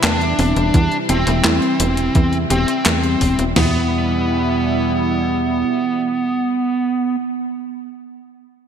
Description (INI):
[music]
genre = synthwave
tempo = 85 BPM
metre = 4/4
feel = straight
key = E minor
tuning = A4 = 441 Hz
[part]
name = bluesy overdriven lead guitar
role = melody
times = 0.0-7.2 s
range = B3 to D4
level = -20 LUFS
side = right 2 dB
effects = distortion, digital delay
[part]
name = soft synth bell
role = second line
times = 0.0-3.4 s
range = C4 to D4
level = -28 LUFS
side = left 5 dB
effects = none
[part]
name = soft supersaw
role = sustained chords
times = 0.0-7.2 s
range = B2 to E4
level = -23 LUFS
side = equal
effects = wide subtle chorus, sidechain pumping
[part]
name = warbly dusty pluck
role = arpeggios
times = 0.0-3.9 s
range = E3 to G4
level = -26 LUFS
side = right 4 dB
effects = none
[part]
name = tight sequencer bass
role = bass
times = 0.0-5.6 s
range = E1 to E2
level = -20 LUFS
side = equal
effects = tube saturation
[part]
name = clean 12-bit digital drum machine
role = drums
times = 0.0-3.5 s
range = handclaps, hi-hat, snare drum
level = -21 LUFS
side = left 1 dB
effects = gated reverb
[part]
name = clean 12-bit digital drum machine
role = drums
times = 0.7-3.7 s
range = crash cymbal, kick drum, snare drum, toms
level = -17 LUFS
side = equal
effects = gated reverb
[sound]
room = moderate lush hall reverb, RT60 2.8 s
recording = bright 1980s-style digital production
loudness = -15 LUFS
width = side -8 dB against mid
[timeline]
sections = 0.0-3.6 A section; 3.6-6.4 B section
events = none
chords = 0.0 C/E; 3.6 Em